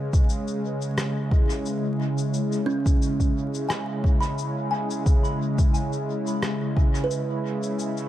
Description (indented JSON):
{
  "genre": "ambient dub",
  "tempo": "88 BPM",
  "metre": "4/4",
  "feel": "swing 53% on 16ths",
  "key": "C# minor",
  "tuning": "A4 = 440 Hz",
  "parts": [
    { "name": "warm analog pad", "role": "sustained chords", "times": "0.0-8.1 s", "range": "C#3 to E4", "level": "-26 LUFS", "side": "equal", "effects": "chorus, tremolo" },
    { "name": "kalimba", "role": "arpeggios", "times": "0.0-8.1 s", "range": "C#4 to B5", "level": "-30 LUFS", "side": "right 2 dB", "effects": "dub echo" },
    { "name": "electronic cabasa and rim click", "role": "drums", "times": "0.1-8.1 s", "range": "none", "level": "-34 LUFS", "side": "left 1 dB", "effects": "studio reverb, dub echo" },
    { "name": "electronic kick drum", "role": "drums", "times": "0.1-6.9 s", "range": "none", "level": "-20 LUFS", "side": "equal", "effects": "studio reverb" }
  ],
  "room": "light reverb",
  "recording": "echo-heavy mix, vinyl crackle",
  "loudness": "-22 LUFS",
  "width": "side -13 dB against mid",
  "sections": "0.0-8.1 A section",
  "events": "none",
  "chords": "0.0 C#m7"
}